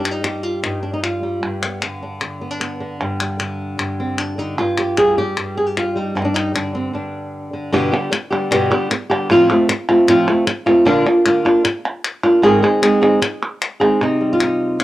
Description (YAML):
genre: flamenco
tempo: 152 BPM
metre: 4/4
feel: straight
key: G phrygian dominant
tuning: A4 = 437 Hz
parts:
  - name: flamenco guitar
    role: melody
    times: 0.0-14.8 s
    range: G2 to Ab4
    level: -16 LUFS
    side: equal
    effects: cassette tape, plate reverb
  - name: palmas hand claps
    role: percussion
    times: 0.1-14.8 s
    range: none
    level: -22 LUFS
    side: left 1 dB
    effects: none
room: moderate studio reverb, RT60 0.6 s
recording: home recording on cassette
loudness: -15 LUFS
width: side -15 dB against mid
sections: 0.0-7.7 A section; 7.7-14.0 B section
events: break 6.9-7.7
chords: 0.0 N.C.; 1.4 G; 4.6 N.C.; 6.2 G5; 7.7 G; 9.3 F/A; 10.9 Bb; 12.4 Ab; 14.0 Cm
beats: 0.24 0.64 1.03 | 1.42 1.82 2.21 2.61 | 3.00 3.39 3.79 4.18 | 4.58 4.97 5.37 5.76 | 6.15 6.55 6.94 7.33 | 7.73 8.12 8.51 8.91 | 9.30 9.69 10.08 10.47 | 10.87 11.26 11.65 12.04 | 12.44 12.83 13.22 13.62 | 14.01 14.40 14.80